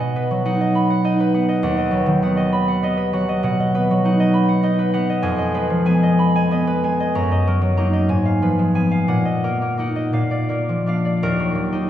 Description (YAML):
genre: classical, solo harp piece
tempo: 55-70 BPM (dotted quarters)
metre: 6/8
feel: rubato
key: Eb minor from 3.4 s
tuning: A4 = 441 Hz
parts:
  - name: concert harp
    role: solo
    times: 0.0-11.9 s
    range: D#2 to B5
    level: -16 LUFS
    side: equal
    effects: none
room: wet recital hall reverb, RT60 1.5 s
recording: heard from further back in the room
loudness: -16 LUFS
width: side -11 dB against mid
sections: 0.0-11.2 A section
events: none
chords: 0.0 B; 1.6 B/D#; 3.4 B; 5.2 Fm7b5; 7.1 Ebm/Gb; 8.1 Fdim/Ab; 9.1 Ebm/Bb; 10.1 Bb; 11.2 Ebm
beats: 0.76 | 1.64 2.53 | 3.43 4.33 | 5.24 6.18 | 7.14 8.07 | 9.07 10.13 | 11.20